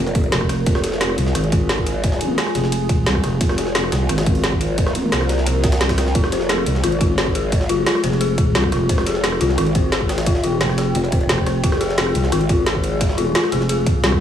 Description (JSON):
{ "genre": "dark technical drum and bass", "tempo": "175 BPM", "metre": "4/4", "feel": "straight", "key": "F minor", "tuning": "A4 = 440 Hz", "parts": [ { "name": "deep dark ambient pad", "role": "sustained chords", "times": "0.0-14.2 s", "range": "F4 to G5", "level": "-25 LUFS", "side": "left 1 dB", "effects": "chorus, built-in reverb, sidechain pumping" }, { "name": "growl bass", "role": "bass", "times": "0.0-13.3 s", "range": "F1 to C2", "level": "-21 LUFS", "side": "equal", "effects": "chorus, overdrive" }, { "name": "drum and bass drum kit", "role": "drums", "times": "0.1-14.2 s", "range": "hi-hat, rim click, snare drum", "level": "-23 LUFS", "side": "right 1 dB", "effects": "none" }, { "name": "jungle sampler-style drum kit", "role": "drums", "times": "0.1-14.1 s", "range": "ride cymbal, snare drum", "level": "-30 LUFS", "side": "right 1 dB", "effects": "high-pass filter on cymbals, high-pass filter on snare" }, { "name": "electronic kick drum", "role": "drums", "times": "0.2-14.2 s", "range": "none", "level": "-19 LUFS", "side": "equal", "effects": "none" }, { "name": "growling FM bass", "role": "bass", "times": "0.3-3.4, 8.0-14.2 s", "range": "F1 to C2", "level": "-20 LUFS", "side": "right 1 dB", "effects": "tube saturation" }, { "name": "dark detuned synth bell", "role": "arpeggios", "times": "6.2-14.1 s", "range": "F4 to C5", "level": "-23 LUFS", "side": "left 4 dB", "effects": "chorus, sidechain pumping, dub echo" } ], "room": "light reverb", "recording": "studio reverb", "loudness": "-16 LUFS", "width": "side -9 dB against mid", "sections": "0.0-14.2 A section", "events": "none", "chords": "0.0 Fmadd9" }